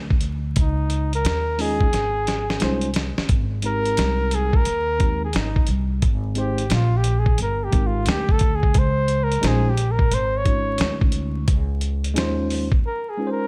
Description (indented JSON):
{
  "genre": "hip hop, jazz-hop",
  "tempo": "88 BPM",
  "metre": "4/4",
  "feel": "swing 65% on 16ths",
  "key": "Ab major",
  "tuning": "A4 = 439 Hz",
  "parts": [
    { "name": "upright bass", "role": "bass", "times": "0.0-12.8 s", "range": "G1 to Eb2", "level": "-26 LUFS", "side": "equal", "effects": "none" },
    { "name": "dusty soul sampler-style drum kit", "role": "drums", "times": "0.1-12.8 s", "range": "hi-hat, kick drum, snare drum", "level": "-24 LUFS", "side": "equal", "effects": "vintage 12-bit sampler grit" },
    { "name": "breathy flugelhorn", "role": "melody", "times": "0.6-13.5 s", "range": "Eb4 to Db5", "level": "-27 LUFS", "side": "equal", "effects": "slapback echo" },
    { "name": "tine electric piano", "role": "accompaniment", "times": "1.6-13.5 s", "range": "Ab3 to Eb5", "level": "-30 LUFS", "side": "equal", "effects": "overdrive" }
  ],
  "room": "little or no reverb",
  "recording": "vinyl crackle",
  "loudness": "-21 LUFS",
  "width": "mono",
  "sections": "0.0-3.3 A section; 3.3-13.5 B section",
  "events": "drum fill 1.9-3.3; flugelhorn solo 3.3-13.5; break 12.8-13.5",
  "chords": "0.0 Dbmaj9; 3.3 Abmaj9; 8.7 Dbmaj9",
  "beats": "| 0.57 1.25 1.93 2.61 | 3.29 3.98 4.66 5.34 | 6.02 6.70 7.38 8.07 | 8.75 9.43 10.11 10.79 | 11.48 12.16 12.84"
}